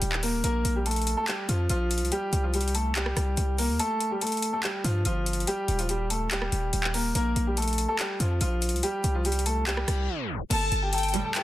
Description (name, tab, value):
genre	hip hop, trap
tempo	143 BPM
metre	4/4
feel	half-time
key	G minor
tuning	A4 = 440 Hz
part	bright concert grand piano	melody	0.0-11.4 s	F3 to A5	-29 LUFS	equal	low-pass filter, digital delay
part	hard-hitting 808-style bass	bass	0.0-11.2 s	Eb1 to G2	-27 LUFS	equal	none
part	trap drum kit	drums	0.0-11.4 s	crash cymbal, handclaps, hi-hat, rim click	-31 LUFS	left 1 dB	overdrive
part	reverse cymbal	sound effects	9.8-10.5 s	none	-39 LUFS	left 7 dB	none
part	warm studio violin section	second line	10.5-11.4 s	G5 to A5	-30 LUFS	left 2 dB	digital delay
part	warm symphonic string section	stabs	11.1-11.3 s	D2 to G3	-31 LUFS	right 8 dB	none
room	little or no reverb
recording	dense, heavily limited modern master, tape stop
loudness	-24 LUFS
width	side -14 dB against mid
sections	0.0-10.5 A section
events	kick muted 3.8-4.2; reverse cymbal 9.8-10.5; break 10.1-10.5; tape stop 10.1-10.5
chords	0.4 Bb5; 2.1 C5; 3.8 Gsus2; 5.5 Eb; 7.2 Bb5; 8.8 C5; 10.5 Gsus2